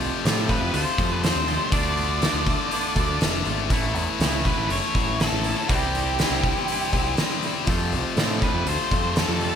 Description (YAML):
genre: quiet-loud alternative rock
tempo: 121 BPM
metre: 4/4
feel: straight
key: unclear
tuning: A4 = 439 Hz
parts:
  - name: twangy electric guitar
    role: arpeggios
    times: 0.0-9.6 s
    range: F2 to F4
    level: -31 LUFS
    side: right 7 dB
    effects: spring reverb
  - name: heavy high-gain guitar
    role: riff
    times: 0.0-9.6 s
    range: F2 to D4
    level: -27 LUFS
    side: left 13 dB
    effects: distortion
  - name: growling picked electric bass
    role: bass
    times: 0.0-9.5 s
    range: F1 to A2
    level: -28 LUFS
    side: equal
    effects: overdrive
  - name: oversized low-tuned drum kit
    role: drums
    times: 0.0-9.5 s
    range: hi-hat, kick drum, snare drum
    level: -25 LUFS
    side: right 1 dB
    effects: none
  - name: octave-fuzz lead guitar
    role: melody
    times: 0.5-9.5 s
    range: G4 to D5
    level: -28 LUFS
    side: right 1 dB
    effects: distortion
room: little or no reverb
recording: none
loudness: -20 LUFS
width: side -8 dB against mid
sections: 0.0-9.6 A section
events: none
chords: 0.0 F; 1.7 Dm; 3.7 A; 5.7 C; 7.7 F